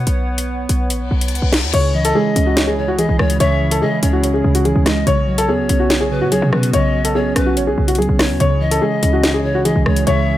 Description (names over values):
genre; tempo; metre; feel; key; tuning
hip hop, drill; 144 BPM; 4/4; half-time; C# minor; A4 = 442 Hz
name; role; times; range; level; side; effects
hollow soft pad; sustained chords; 0.0-10.4 s; C#3 to F#5; -27 LUFS; equal; chorus
short 808-style bass; bass; 0.0-10.4 s; A1 to E3; -18 LUFS; equal; none
drill drum kit; drums; 0.1-10.2 s; crash cymbal, hi-hat, rim click, snare drum; -20 LUFS; left 1 dB; none
reverse cymbal; sound effects; 1.1-1.7 s; none; -27 LUFS; left 7 dB; none
dark baby grand piano; melody; 1.7-10.4 s; F#4 to C#5; -19 LUFS; left 2 dB; none
muted felt-like synth keys; accompaniment; 1.7-10.4 s; C#3 to C#5; -19 LUFS; right 3 dB; chorus
polished pan flute; second line; 1.9-10.4 s; B4 to E5; -23 LUFS; left 4 dB; digital delay
room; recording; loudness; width
digital ambience; none; -14 LUFS; side -14 dB against mid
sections
0.0-1.7 A section; 1.7-10.4 B section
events
reverse cymbal 1.1-1.7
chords
0.0 Bsus2; 1.7 C#m; 5.1 Bsus2; 8.4 C#m